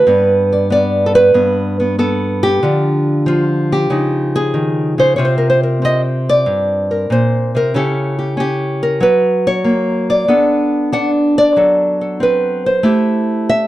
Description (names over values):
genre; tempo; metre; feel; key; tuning
solo jazz; 94 BPM; 4/4; swing 69% on 8ths; unclear; A4 = 440 Hz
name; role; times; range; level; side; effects
nylon-string guitar; solo; 0.0-13.7 s; G2 to F#5; -12 LUFS; equal; none
room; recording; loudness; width
light reverb; dark, warm production; -12 LUFS; side -15 dB against mid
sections
0.1-13.7 A section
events
none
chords
0.1 Gadd9; 2.6 Dmadd11; 3.9 C#add9; 5.2 C9sus4; 7.7 C#dim; 9.0 F#; 10.3 Bm7; 12.8 Am7